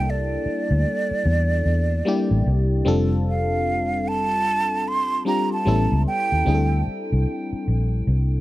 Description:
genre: R&B, neo-soul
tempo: 75 BPM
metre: 4/4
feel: swing 63% on 16ths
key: unclear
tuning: A4 = 440 Hz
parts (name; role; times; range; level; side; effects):
- breathy concert flute; melody; 0.0-6.8 s; D5 to C6; -25 LUFS; right 3 dB; tape echo
- FM electric piano; accompaniment; 0.0-8.4 s; G3 to A4; -25 LUFS; left 2 dB; chorus
- vintage muted fingered electric bass; bass; 0.0-8.4 s; F1 to E2; -21 LUFS; equal; none
room: little or no reverb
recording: none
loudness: -19 LUFS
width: side -16 dB against mid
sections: 0.0-8.4 A section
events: none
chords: 0.0 C13; 2.9 F69; 5.7 A9; 6.5 D9sus4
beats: | 0.05 0.85 1.65 2.45 | 3.25 4.05 4.85 5.65 | 6.45 7.25 8.05

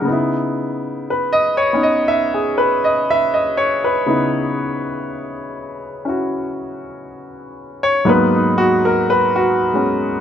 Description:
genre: solo jazz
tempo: 60 BPM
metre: 4/4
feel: swing 68% on 8ths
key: unclear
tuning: A4 = 440 Hz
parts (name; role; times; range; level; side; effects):
- clear grand piano; solo; 0.0-10.2 s; G#2 to E5; -16 LUFS; equal; none
room: light reverb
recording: none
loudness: -15 LUFS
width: side -9 dB against mid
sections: 0.0-10.2 A section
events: grand piano solo 0.0-10.2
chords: 0.1 C#m9; 8.1 G#m9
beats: | 0.08 1.07 2.07 3.07 | 4.07 5.07 6.07 7.07 | 8.07 9.06 10.06

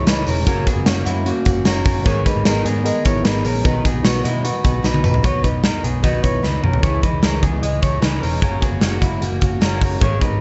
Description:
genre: jangly indie pop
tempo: 151 BPM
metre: 4/4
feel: straight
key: B major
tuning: A4 = 437 Hz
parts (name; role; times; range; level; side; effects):
- picked twelve-string acoustic guitar; accompaniment; 0.0-10.4 s; F#2 to B4; -28 LUFS; equal; none
- reed electric piano; accompaniment; 0.0-5.3 s; B3 to B5; -27 LUFS; equal; none
- electric guitar through a small old amp; arpeggios; 0.0-10.4 s; G#3 to D#5; -26 LUFS; equal; digital delay
- vintage muted picked electric bass; bass; 0.0-10.4 s; E1 to B2; -24 LUFS; equal; none
- big rock drum kit; drums; 0.1-10.3 s; hi-hat, kick drum, snare drum, toms; -21 LUFS; equal; none
- tambourine; percussion; 0.1-5.1 s; none; -39 LUFS; equal; none
room: little or no reverb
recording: nothing above 7.9 kHz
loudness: -18 LUFS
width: mono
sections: 0.0-5.2 A section; 5.2-6.8 B section; 6.8-10.4 C section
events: reed electric piano fill 1.5-2.1, 4.0-5.2; drum fill 4.8-5.2, 6.4-6.8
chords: 0.5 F#; 2.1 G#madd9; 3.6 B; 6.8 C#madd9; 8.4 F#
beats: 0.07 | 0.47 0.87 1.26 1.66 | 2.06 2.46 2.85 3.25 | 3.65 4.05 4.44 4.84 | 5.24 5.64 6.04 6.43 | 6.83 7.23 7.63 8.03 | 8.42 8.82 9.22 9.62 | 10.02

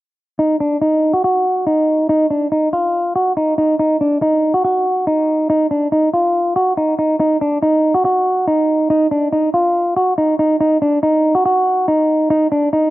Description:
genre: hip hop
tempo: 141 BPM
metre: 4/4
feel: half-time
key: Eb harmonic minor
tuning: A4 = 440 Hz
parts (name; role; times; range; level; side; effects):
- clean electric guitar; melody; 0.4-12.9 s; D4 to Gb4; -13 LUFS; equal; low-pass filter
room: light reverb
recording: dry, gritty hardware recording, low-pass filter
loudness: -13 LUFS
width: side -16 dB against mid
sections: 0.4-12.9 A section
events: none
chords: none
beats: | 0.39 0.82 1.24 1.67 | 2.09 2.52 2.94 3.37 | 3.79 4.22 4.65 5.07 | 5.50 5.92 6.35 6.77 | 7.20 7.62 8.05 8.48 | 8.90 9.33 9.75 10.18 | 10.60 11.03 11.45 11.88 | 12.30 12.73

